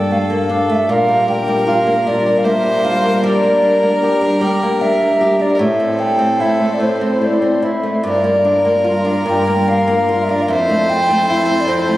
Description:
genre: celtic folk, Celtic slow air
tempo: 76 BPM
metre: 3/4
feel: rubato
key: G dorian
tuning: A4 = 440 Hz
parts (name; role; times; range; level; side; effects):
- mellow baroque flute; melody; 0.0-12.0 s; C5 to G5; -16 LUFS; equal; none
- rich fiddle; second line; 0.0-12.0 s; A4 to C5; -22 LUFS; equal; none
- flamenco guitar; accompaniment; 0.0-12.0 s; F2 to G4; -17 LUFS; left 1 dB; none
- warm studio string section; sustained chords; 0.0-12.0 s; Bb2 to C5; -22 LUFS; equal; none
room: wet church reverb, RT60 3.0 s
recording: recorded on a phone in the room, club reverb, compression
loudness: -13 LUFS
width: side -15 dB against mid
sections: 0.0-12.0 A section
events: none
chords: 0.0 Gmadd9; 0.9 Bb6; 5.6 Am; 8.0 Gm7; 10.5 Fmaj7

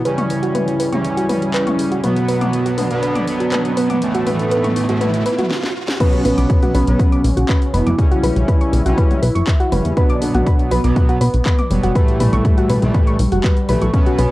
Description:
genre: melodic techno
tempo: 121 BPM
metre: 4/4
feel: straight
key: B minor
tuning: A4 = 439 Hz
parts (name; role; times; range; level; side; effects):
- fat analog lead; melody; 0.0-14.3 s; G3 to F#4; -22 LUFS; equal; lush chorus, sidechain pumping, cassette tape, analog delay
- analog synth brass; stabs; 0.0-14.3 s; A2 to C#4; -20 LUFS; right 1 dB; chorus, sidechain pumping, cassette tape, analog delay
- riser; sound effects; 2.2-6.0 s; none; -30 LUFS; right 2 dB; none
- soft round pluck; arpeggios; 0.1-14.3 s; F#4 to D6; -22 LUFS; equal; chorus, vintage 12-bit sampler grit, sidechain pumping, cassette tape, analog delay
- house drum kit; drums; 0.1-14.3 s; crash cymbal, handclaps, hi-hat, snare drum, toms; -26 LUFS; equal; overdrive, sidechain pumping on hats, studio reverb, cassette tape, sidechain pumping on toms, sidechain pumping on cymbals
- electronic kick drum; drums; 6.0-14.0 s; none; -14 LUFS; equal; overdrive, studio reverb, cassette tape
- plucky analog bass; bass; 6.2-14.3 s; F#1 to E2; -16 LUFS; equal; sidechain pumping
room: moderate spring reverb, RT60 1.2 s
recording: home recording on cassette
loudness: -14 LUFS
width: side -17 dB against mid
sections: 0.0-6.0 A section; 6.0-14.3 B section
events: build-up 0.0-6.0; filter sweep on analog synth lead 0.0-6.0; riser 2.2-6.0; drum fill 5.5-6.0; stop 5.5-6.0; drop 6.0-14.3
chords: 0.1 C#dim; 2.0 Bm; 4.0 A; 6.0 Bmadd9; 8.0 C#dim/B; 10.0 Bm; 12.0 A

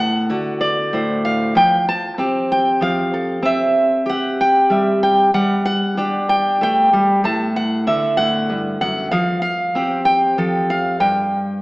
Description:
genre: folk, solo fingerstyle acoustic guitar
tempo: 64 BPM (dotted quarters)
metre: 6/8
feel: straight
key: unclear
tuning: A4 = 443 Hz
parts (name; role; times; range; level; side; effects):
- fingerpicked steel-string acoustic guitar; solo; 0.0-11.6 s; F#2 to A5; -15 LUFS; equal; none
room: wet recital hall reverb, RT60 1.8 s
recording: recorded in a church or concert hall, AM radio sound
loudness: -15 LUFS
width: side -22 dB against mid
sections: 0.0-11.6 A section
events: none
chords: 0.0 D7; 1.6 Fadd9; 3.4 C; 5.3 G5; 7.2 D; 9.1 Fadd9; 11.0 N.C.

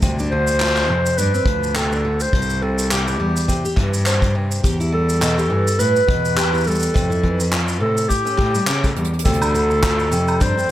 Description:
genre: folktronica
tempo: 104 BPM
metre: 4/4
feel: swing 56% on 16ths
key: D dorian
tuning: A4 = 440 Hz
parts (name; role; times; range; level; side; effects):
- picked steel-string acoustic guitar; arpeggios; 0.0-10.7 s; B2 to C5; -24 LUFS; equal; digital delay
- rich cello; bass; 0.0-10.7 s; C2 to C#3; -20 LUFS; equal; none
- kick drum; drums; 0.0-10.5 s; none; -21 LUFS; equal; none
- soft brush drum kit; drums; 0.0-10.7 s; handclaps, hi-hat, shaker, woodblock; -24 LUFS; equal; none
- mellow clarinet; melody; 0.3-10.7 s; G4 to C5; -21 LUFS; equal; digital delay
room: small room ambience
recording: faint mains hum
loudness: -16 LUFS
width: side -13 dB against mid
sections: 0.0-9.3 A section; 9.3-10.7 B section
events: drum fill 9.0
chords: 0.0 Dm7; 2.3 C; 4.6 Em; 6.9 Fmaj7; 8.1 A7; 9.3 Dm7

